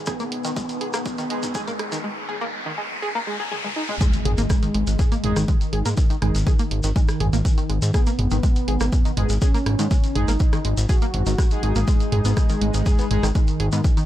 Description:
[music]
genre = melodic techno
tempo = 122 BPM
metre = 4/4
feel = straight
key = G# minor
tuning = A4 = 440 Hz
[part]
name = lush unison pad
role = sustained chords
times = 0.0-2.0 s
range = G#3 to B4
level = -40 LUFS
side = left 1 dB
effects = none
[part]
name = analog drone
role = drone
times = 0.0-2.0 s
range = G#2 to D#3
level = -46 LUFS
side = left 3 dB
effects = none
[part]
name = riser and impact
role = sound effects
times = 0.0-6.0 s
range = none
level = -31 LUFS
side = equal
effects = none
[part]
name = wide unison lead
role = melody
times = 0.1-14.0 s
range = D#3 to F#4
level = -28 LUFS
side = equal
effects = cassette tape, sidechain pumping, ping-pong delay
[part]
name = tight sequenced synth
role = arpeggios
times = 0.1-14.0 s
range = D#3 to G#4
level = -29 LUFS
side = equal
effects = chorus, sidechain pumping, tape echo
[part]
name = electronic kick drum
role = drums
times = 0.1-13.9 s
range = none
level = -19 LUFS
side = equal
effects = none
[part]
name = punchy analog drum machine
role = drums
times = 0.1-14.1 s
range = hi-hat, rim click, toms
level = -30 LUFS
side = right 1 dB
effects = none
[part]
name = shekere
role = percussion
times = 0.1-14.1 s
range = none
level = -35 LUFS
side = left 2 dB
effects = none
[part]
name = analog synth brass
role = stabs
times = 1.3-1.5, 5.2-13.3 s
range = G#3 to G#4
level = -32 LUFS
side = equal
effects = chorus, sidechain pumping, tape echo
[part]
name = fat analog bass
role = bass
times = 4.3-13.8 s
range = G#1 to G#2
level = -21 LUFS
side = equal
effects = sidechain pumping
[sound]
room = little or no reverb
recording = dark, warm production, high-pass filter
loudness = -19 LUFS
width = side -13 dB against mid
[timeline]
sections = 0.0-4.0 A section; 4.0-14.1 B section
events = build-up 0.0-4.0; riser 0.0-4.0; filter sweep on analog synth lead 0.0-4.0; filter sweep 0.0-4.0; drum fill 3.5-4.0; drop 4.0-14.1; impact 4.0-6.0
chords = 0.0 G#m

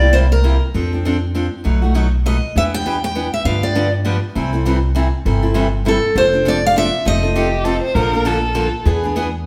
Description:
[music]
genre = acoustic string swing (jazz manouche)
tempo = 200 BPM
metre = 3/4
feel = swing 60% on 8ths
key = C major, F major from 6.2 s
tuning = A4 = 441 Hz
[part]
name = picked steel-string acoustic guitar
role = melody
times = 0.0-7.8 s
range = A4 to G5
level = -20 LUFS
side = equal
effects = slapback echo, plate reverb
[part]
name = picked steel-string acoustic guitar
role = accompaniment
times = 0.0-9.3 s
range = B2 to A4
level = -22 LUFS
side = equal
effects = none
[part]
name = upright bass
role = bass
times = 0.0-9.5 s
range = F1 to G2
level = -20 LUFS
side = equal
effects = none
[part]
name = warm violin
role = second line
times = 7.4-8.9 s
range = G4 to C5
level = -23 LUFS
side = equal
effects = none
[sound]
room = wet studio reverb, RT60 0.9 s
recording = heard from further back in the room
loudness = -17 LUFS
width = mono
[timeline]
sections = 0.0-6.2 A section; 6.2-9.5 B section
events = none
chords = 0.0 C7; 0.8 F6; 1.7 B7; 2.6 Em7; 3.5 G7; 4.4 C6; 6.2 F6; 7.1 F7; 8.0 Bbmaj7; 8.9 E7

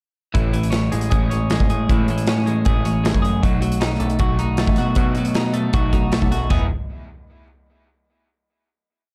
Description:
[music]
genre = indie rock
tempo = 156 BPM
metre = 4/4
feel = straight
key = E major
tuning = A4 = 440 Hz
[part]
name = twelve-string electric guitar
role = riff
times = 0.3-6.7 s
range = E3 to G#4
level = -28 LUFS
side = equal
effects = none
[part]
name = overdriven picked electric bass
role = bass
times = 0.3-6.7 s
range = E1 to B2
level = -24 LUFS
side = equal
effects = none
[part]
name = big rock drum kit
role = drums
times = 0.3-6.6 s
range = crash cymbal, hi-hat, kick drum, snare drum, toms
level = -23 LUFS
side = equal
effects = none
[part]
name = raw garage guitar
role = riff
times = 0.4-6.7 s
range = E3 to G#4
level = -28 LUFS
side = equal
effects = overdrive, lush chorus, digital delay
[sound]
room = little or no reverb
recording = dark, warm production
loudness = -19 LUFS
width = mono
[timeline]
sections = 0.3-6.5 pre-chorus; 6.5-8.0 final chord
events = none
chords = 0.3 Amaj7; 3.4 B7; 6.5 E

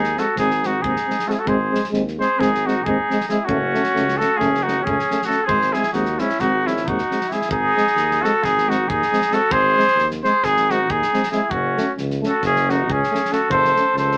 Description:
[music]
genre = balkan folk, Balkan brass band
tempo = 269 BPM (eighths)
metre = 9/8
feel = straight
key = G# phrygian dominant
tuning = A4 = 441 Hz
[part]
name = clear cornet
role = melody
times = 0.0-14.2 s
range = E4 to B#4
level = -22 LUFS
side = equal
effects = none
[part]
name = warm trumpet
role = second line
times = 0.0-14.2 s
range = C#4 to A4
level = -27 LUFS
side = equal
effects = none
[part]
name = mellow euphonium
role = accompaniment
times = 0.0-13.8 s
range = G#3 to A3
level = -28 LUFS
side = equal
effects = none
[part]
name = warm tuba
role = bass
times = 0.0-14.2 s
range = F#1 to D#2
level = -28 LUFS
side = equal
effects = none
[part]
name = loose indie drum kit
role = percussion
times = 0.0-14.2 s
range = kick drum, snare drum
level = -34 LUFS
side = equal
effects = none
[part]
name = mellow euphonium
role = accompaniment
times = 0.2-13.8 s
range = B#3 to C#4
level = -29 LUFS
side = equal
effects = none
[sound]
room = light reverb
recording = none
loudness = -19 LUFS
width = mono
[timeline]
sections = 0.0-7.5 A section; 7.5-14.2 A section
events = none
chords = 0.0 G#; 3.5 F#m; 5.5 G#; 11.5 F#m

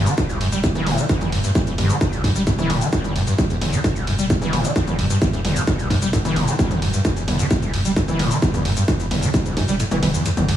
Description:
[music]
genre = driving peak-time techno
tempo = 131 BPM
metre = 4/4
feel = straight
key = E minor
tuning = A4 = 437 Hz
[part]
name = screaming distorted acid line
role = riff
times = 0.0-10.6 s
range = E1 to G3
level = -21 LUFS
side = equal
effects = distortion, ensemble chorus, cassette tape, sidechain pumping, tape echo
[part]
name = saturated sub bass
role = bass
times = 0.0-10.6 s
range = E1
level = -27 LUFS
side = equal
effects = overdrive, sidechain pumping, low-pass filter
[part]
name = techno drum kit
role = drums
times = 0.1-10.6 s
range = hi-hat, ride cymbal, shaker, toms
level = -24 LUFS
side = equal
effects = sidechain pumping on hats, sidechain pumping on cymbals, sidechain pumping on perc, sidechain pumping on toms
[part]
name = electronic kick drum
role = drums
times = 0.2-9.7 s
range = none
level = -22 LUFS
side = equal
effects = distortion
[sound]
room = little or no reverb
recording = studio reverb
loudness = -17 LUFS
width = side -11 dB against mid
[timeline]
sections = 0.0-10.6 A section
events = kick drops out 9.8-10.6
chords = none

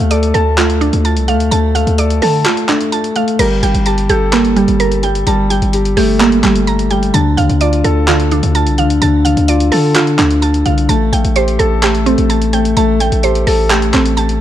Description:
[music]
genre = hip hop, trap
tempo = 128 BPM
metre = 4/4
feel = half-time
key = D minor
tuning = A4 = 441 Hz
[part]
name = dark concert grand piano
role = accompaniment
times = 0.0-14.4 s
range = D3 to A5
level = -15 LUFS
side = left 4 dB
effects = none
[part]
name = mallet-like synth pluck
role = arpeggios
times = 0.0-14.4 s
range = G3 to Bb5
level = -16 LUFS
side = right 6 dB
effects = chorus, tape echo
[part]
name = distorted 808-style bass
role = bass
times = 0.0-14.4 s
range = G1 to D3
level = -15 LUFS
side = equal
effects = distortion
[part]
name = dusty soul sampler-style drum kit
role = drums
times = 0.0-14.4 s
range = crash cymbal, handclaps, hi-hat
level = -20 LUFS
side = left 1 dB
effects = none
[sound]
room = little or no reverb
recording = dark, warm production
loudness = -10 LUFS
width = side -11 dB against mid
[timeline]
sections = 0.0-3.4 A section; 3.4-14.4 B section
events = kick muted 2.5-3.4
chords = 0.0 Dm; 3.4 Gmadd9; 7.1 Dm; 10.9 Am7

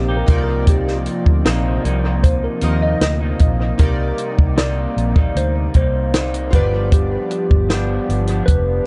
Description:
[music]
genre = indie pop, bedroom pop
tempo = 77 BPM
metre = 4/4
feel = straight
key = C minor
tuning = A4 = 441 Hz
[part]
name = mellow tine electric piano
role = melody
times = 0.0-8.9 s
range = F4 to Eb5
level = -27 LUFS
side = equal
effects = subtle chorus, analog delay
[part]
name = chorused retro synth keys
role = accompaniment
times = 0.0-8.9 s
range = Eb4 to Eb5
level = -31 LUFS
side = equal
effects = cassette tape, analog delay
[part]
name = electric guitar through a small old amp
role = accompaniment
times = 0.0-8.9 s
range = G2 to G4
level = -29 LUFS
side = equal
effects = subtle chorus, vibrato effect, analog delay
[part]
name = hollow soft pad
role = sustained chords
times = 0.0-8.9 s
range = C3 to G4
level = -29 LUFS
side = equal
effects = chorus
[part]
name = vintage muted fingered electric bass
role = bass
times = 0.0-8.8 s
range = F1 to Eb2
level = -22 LUFS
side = equal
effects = none
[part]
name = compact cocktail drum kit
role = drums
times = 0.3-8.7 s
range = hi-hat, kick drum, snare drum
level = -18 LUFS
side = equal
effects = vintage 12-bit sampler grit
[sound]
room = light reverb, studio ambience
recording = echo-heavy mix, nothing above 11.0 kHz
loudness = -17 LUFS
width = mono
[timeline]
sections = 0.0-3.8 A section; 3.8-8.9 B section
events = tine electric piano solo 0.0-3.8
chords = 0.3 Cm11; 3.8 Cm7; 6.5 G7

